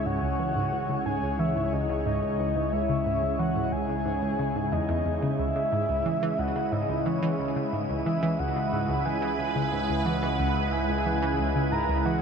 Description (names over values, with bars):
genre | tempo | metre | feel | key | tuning
ambient, sequencer-driven space music | 90 BPM | 4/4 | straight | C# minor | A4 = 440 Hz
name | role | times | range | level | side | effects
soft octave-layered synth lead | melody | 0.0-12.2 s | C#5 to A#5 | -30 LUFS | left 1 dB | chorus, shimmer reverb, tape echo
sweeping resonant pad | sustained chords | 0.0-12.2 s | C#3 to C#5 | -30 LUFS | right 1 dB | chorus, shimmer reverb
analog drone | bass | 0.0-12.2 s | C#2 | -34 LUFS | left 1 dB | chorus
wind-like tuned noise texture | texture | 0.0-12.2 s | G#3 to D#6 | -37 LUFS | right 2 dB | built-in reverb, shimmer reverb
analog pluck | riff | 0.1-12.2 s | C#2 to E3 | -30 LUFS | right 1 dB | chorus, tape echo
room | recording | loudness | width
wet huge ambient reverb, RT60 8.1 s | none | -24 LUFS | side -6 dB against mid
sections
0.0-12.2 A section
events
none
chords
0.0 C#m